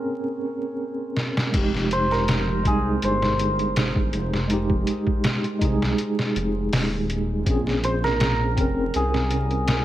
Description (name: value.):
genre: trip hop.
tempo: 81 BPM.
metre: 4/4.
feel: swing 53% on 16ths.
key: F minor.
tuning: A4 = 439 Hz.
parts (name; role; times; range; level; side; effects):
mellow tine electric piano; accompaniment; 0.0-9.8 s; Ab3 to Bb4; -25 LUFS; right 1 dB; medium stereo tremolo, vintage 12-bit sampler grit, tape echo.
trip hop sampler-style drum kit; drums; 1.2-9.8 s; crash cymbal, hi-hat, kick drum, snare drum; -24 LUFS; equal; none.
dark detuned saw bass; bass; 1.5-9.8 s; Eb1 to C2; -26 LUFS; equal; none.
hammered dulcimer; melody; 1.9-9.8 s; Ab4 to C5; -27 LUFS; right 1 dB; tape echo.
room: light reverb.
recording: vinyl crackle.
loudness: -20 LUFS.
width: side -13 dB against mid.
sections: 0.0-1.5 A section; 1.5-9.8 B section.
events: break 0.0-1.5; drum fill 1.2-1.5.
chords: 0.0 Bbm9; 1.5 Fm9; 7.5 Bbm9.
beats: 0.06 0.80 | 1.54 2.28 3.02 3.76 | 4.50 5.24 5.98 6.72 | 7.46 8.21 8.95 9.69.